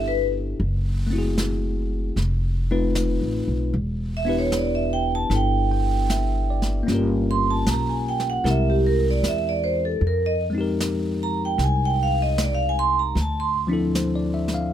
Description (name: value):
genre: jazz ballad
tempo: 76 BPM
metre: 4/4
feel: swing 67% on 8ths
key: unclear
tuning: A4 = 438 Hz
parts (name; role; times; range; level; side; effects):
- vibraphone with medium hard mallets; melody; 0.0-13.6 s; G4 to C6; -24 LUFS; right 3 dB; none
- bell-like tine electric piano; accompaniment; 0.0-14.7 s; F3 to G5; -26 LUFS; left 3 dB; none
- upright bass; bass; 0.0-14.7 s; E1 to F2; -24 LUFS; equal; none
- jazz brush drum kit; drums; 0.6-14.7 s; brushed snare drum, hi-hat, snare drum; -31 LUFS; right 1 dB; none
room: little or no reverb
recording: close, detailed microphones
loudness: -20 LUFS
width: side -10 dB against mid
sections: 0.0-14.7 A section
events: vibraphone solo 0.0-14.7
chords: 0.0 Cmaj9; 0.6 F#m7b5; 2.2 F7#11; 3.7 Em7; 6.9 Gm7b5; 8.4 C7b13; 10.0 Fm11; 13.2 Dm7